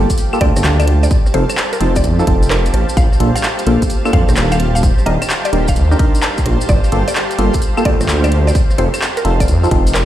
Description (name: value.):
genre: UK garage, two-step garage.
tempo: 129 BPM.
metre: 4/4.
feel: swing 67% on 16ths.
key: unclear.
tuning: A4 = 439 Hz.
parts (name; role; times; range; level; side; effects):
percussive organ stab; stabs; 0.0-10.1 s; Bb3 to Bb4; -20 LUFS; equal; chorus, phaser, tape echo.
dark detuned saw bass; bass; 0.0-10.1 s; Eb1 to F2; -14 LUFS; equal; tube saturation.
granular cloud pad; texture; 0.0-10.1 s; G4 to A5; -23 LUFS; right 2 dB; built-in reverb, sidechain pumping.
electronic kick drum; drums; 0.1-9.8 s; none; -15 LUFS; equal; overdrive.
house drum kit; drums; 0.1-10.1 s; claves, handclaps, hi-hat, rim click; -21 LUFS; equal; overdrive.
cabasa; percussion; 0.1-10.1 s; none; -29 LUFS; left 1 dB; none.
mallet-like synth pluck; melody; 0.4-10.1 s; Bb4 to A5; -23 LUFS; equal; chorus, tape echo.
room: digital ambience.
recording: played on a big sound system in a bare room, stone room reverb.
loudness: -12 LUFS.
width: side -12 dB against mid.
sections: 0.0-10.1 A section.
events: none.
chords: 0.0 Gm9; 1.1 F7; 3.0 Ebmaj7; 6.7 Gm9; 8.6 F7.